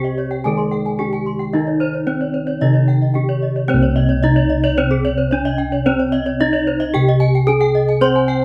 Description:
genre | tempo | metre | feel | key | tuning
gamelan | 111 BPM | 4/4 | straight | C pelog | A4 = 441 Hz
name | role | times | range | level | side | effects
gamelan-type bronze metallophone | melody | 0.0-8.4 s | C4 to C5 | -22 LUFS | equal | none
gamelan-type bronze metallophone | accompaniment | 0.0-3.7, 8.0-8.4 s | Eb3 to C4 | -27 LUFS | equal | none
gamelan-type bronze metallophone | arpeggios | 0.0-8.3 s | Ab4 to C6 | -27 LUFS | equal | none
gamelan-type bronze metallophone | arpeggios | 0.0-8.4 s | C5 to Ab5 | -28 LUFS | equal | none
gamelan-type bossed gongs | bass | 0.0-8.4 s | C2 to C5 | -20 LUFS | equal | none
room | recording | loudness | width
moderate studio reverb, RT60 0.7 s | band playing live in one room | -17 LUFS | mono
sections
0.0-3.7 A section; 3.7-8.4 A section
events
none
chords
none

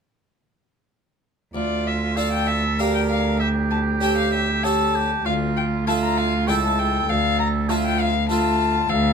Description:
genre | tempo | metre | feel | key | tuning
classical, baroque-style sonata movement with continuo | 99 BPM | 3/4 | rubato | D minor | A4 = 439 Hz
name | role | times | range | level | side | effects
warm oboe | second line | 1.5-9.1 s | F4 to Bb4 | -26 LUFS | right 8 dB | none
harpsichord | accompaniment | 1.5-9.1 s | C#2 to Bb4 | -26 LUFS | right 1 dB | none
warm cello | bass | 1.5-9.1 s | C#2 to D2 | -23 LUFS | right 1 dB | none
dark violin | melody | 1.6-9.1 s | D5 to Bb5 | -24 LUFS | left 8 dB | none
room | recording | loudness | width
little or no reverb | close, detailed microphones | -19 LUFS | side -6 dB against mid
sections
1.6-9.1 A section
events
none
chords
1.6 Dm; 2.8 Gm/D; 3.4 A7/D; 5.3 Dm; 6.5 A7/C#; 7.1 Dm

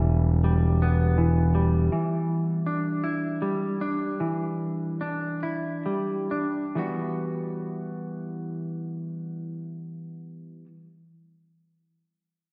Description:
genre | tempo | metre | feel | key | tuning
rock | 65-81 BPM | 3/4 | straight | E minor | A4 = 440 Hz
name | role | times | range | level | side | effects
semi-hollow electric guitar | arpeggios | 0.0-10.7 s | E3 to F#4 | -30 LUFS | equal | lush chorus, slapback echo
growling fingered electric bass | bass | 0.0-1.9 s | E1 | -23 LUFS | equal | overdrive
room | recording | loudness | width
wet concert hall reverb, RT60 2.0 s | big arena sound | -27 LUFS | mono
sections
0.0-6.8 A section; 6.8-9.6 B section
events
slowing down 1.9-6.8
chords
0.0 Em; 1.9 G5/E; 6.8 Emadd9

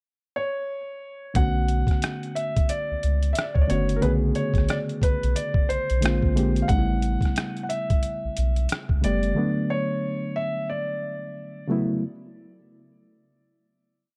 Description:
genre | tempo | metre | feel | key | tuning
R&B, neo-soul | 90 BPM | 4/4 | swing 60% on 16ths | unclear | A4 = 440 Hz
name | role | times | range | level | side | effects
warm grand piano | melody | 0.4-11.7 s | A#4 to F#5 | -32 LUFS | equal | none
reed electric piano | accompaniment | 1.3-12.0 s | C#3 to G#4 | -30 LUFS | equal | none
round analog bass | bass | 1.4-9.3 s | F#1 to D2 | -26 LUFS | equal | none
boom bap sampler-style drum kit | drums | 1.4-9.3 s | hi-hat, kick drum, rim click | -26 LUFS | equal | none
room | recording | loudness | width
little or no reverb | dark, warm production | -25 LUFS | mono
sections
0.0-1.4 pickup bar; 1.4-12.0 A section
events
none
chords
0.0 N.C.; 1.4 Bm9; 6.0 A#9; 6.7 A7; 9.4 Bm9

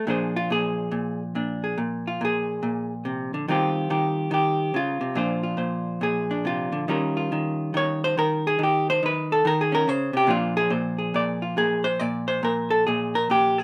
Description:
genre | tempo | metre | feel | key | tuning
solo jazz | 141 BPM | 4/4 | swing 65% on 8ths, rubato | Bb mixolydian | A4 = 440 Hz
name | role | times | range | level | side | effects
vintage hollow-body jazz guitar | solo | 0.0-13.6 s | Bb2 to D5 | -24 LUFS | equal | none
room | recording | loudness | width
light reverb | none | -24 LUFS | mono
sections
0.1-13.6 A section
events
hollow-body jazz guitar solo 0.1-13.6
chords
0.1 Bb9; 3.5 Eb13; 5.2 Bb9; 6.9 Eb13; 10.3 Bb9

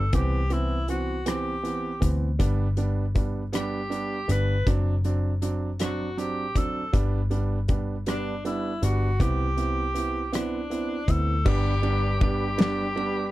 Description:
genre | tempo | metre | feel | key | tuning
six-eight pop ballad | 53 BPM (dotted quarters) | 6/8 | straight | G major | A4 = 441 Hz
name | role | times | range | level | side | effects
clear tenor saxophone | melody | 0.0-13.3 s | D4 to B4 | -30 LUFS | equal | none
vintage muted fingered electric bass | bass | 0.0-13.3 s | F#1 to D2 | -27 LUFS | left 1 dB | none
clear upright piano | accompaniment | 0.1-13.2 s | E3 to E4 | -30 LUFS | right 4 dB | none
loose indie drum kit | drums | 0.1-13.1 s | crash cymbal, hi-hat, kick drum, ride cymbal, rim click, snare drum | -26 LUFS | left 1 dB | none
tonewheel organ | sustained chords | 11.5-13.3 s | G3 to B4 | -34 LUFS | left 2 dB | chorus vibrato, lush chorus
room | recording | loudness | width
little or no reverb | none | -23 LUFS | side -16 dB against mid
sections
0.0-11.5 A section; 11.5-13.3 B section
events
none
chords
0.1 Cmaj7; 2.4 G; 4.7 D7/F#; 6.9 G; 9.2 Cmaj7; 11.5 G

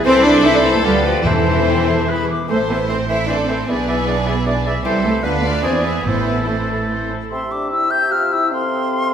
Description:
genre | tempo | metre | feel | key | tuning
quick classical-period movement for symphony orchestra | 141-156 BPM | 3/4 | rubato | A minor | A4 = 440 Hz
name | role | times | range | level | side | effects
clear chamber violin section | melody | 0.0-7.1 s | E4 to C5 | -26 LUFS | left 2 dB | none
bright silver concert flute | second line | 0.0-9.1 s | C5 to G6 | -23 LUFS | left 2 dB | none
warm chamber violin section | second line | 0.0-7.1 s | E4 to E5 | -25 LUFS | left 2 dB | none
warm clarinet | second line | 0.0-9.1 s | E4 to B4 | -30 LUFS | left 1 dB | none
warm oboe | second line | 0.0-9.1 s | G#4 to F5 | -24 LUFS | right 1 dB | none
warm bassoon | accompaniment | 0.0-9.1 s | C3 to E3 | -26 LUFS | right 2 dB | none
warm French horn section | sustained chords | 0.0-9.1 s | C4 to D5 | -26 LUFS | left 5 dB | none
rich symphonic viola section | accompaniment | 0.1-7.3 s | C4 to E5 | -25 LUFS | right 1 dB | none
rich studio cello section | bass | 0.1-7.1 s | E3 to E4 | -19 LUFS | right 1 dB | none
rich studio double bass section | bass | 0.1-7.1 s | A1 to E2 | -23 LUFS | right 3 dB | none
timpani | percussion | 1.2-1.8, 6.1-6.6 s | E2 to A2 | -24 LUFS | left 1 dB | none
room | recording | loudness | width
wet scoring stage reverb, RT60 1.9 s | none | -15 LUFS | side -8 dB against mid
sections
0.0-7.3 A section; 7.3-9.1 B section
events
none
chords
0.0 Am/C; 0.8 Bdim/D; 1.2 Am/E; 2.1 E; 2.5 Am; 3.7 E7/B; 4.8 Am/C; 5.2 Bdim/D; 5.6 E7; 6.1 Am; 7.3 C; 8.5 F/C

